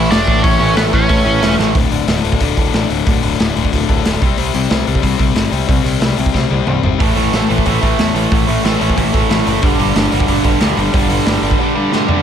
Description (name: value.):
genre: punk rock.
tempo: 183 BPM.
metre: 4/4.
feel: straight.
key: unclear.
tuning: A4 = 440 Hz.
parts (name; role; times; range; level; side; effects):
nasal lead guitar with a parked wah; melody; 0.0-1.5 s; B3 to D5; -16 LUFS; equal; overdrive.
crunchy overdriven guitar; riff; 0.0-12.2 s; D2 to C4; -17 LUFS; left 13 dB; none.
overdriven semi-hollow guitar; riff; 0.0-1.7, 7.0-12.2 s; G2 to A3; -18 LUFS; right 17 dB; none.
growling picked electric bass; bass; 0.0-11.5 s; D1 to E2; -19 LUFS; right 1 dB; overdrive.
raw garage drum kit; drums; 0.1-12.2 s; hi-hat, kick drum, snare drum, toms; -16 LUFS; right 1 dB; none.
room: little or no reverb.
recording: none.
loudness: -12 LUFS.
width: side -8 dB against mid.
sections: 0.0-1.7 A section; 1.7-12.2 B section.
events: drum fill 1.6, 6.3-7.0, 11.9-12.2.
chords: 0.0 A; 1.7 D5; 4.2 C5; 7.0 A5; 9.6 G5.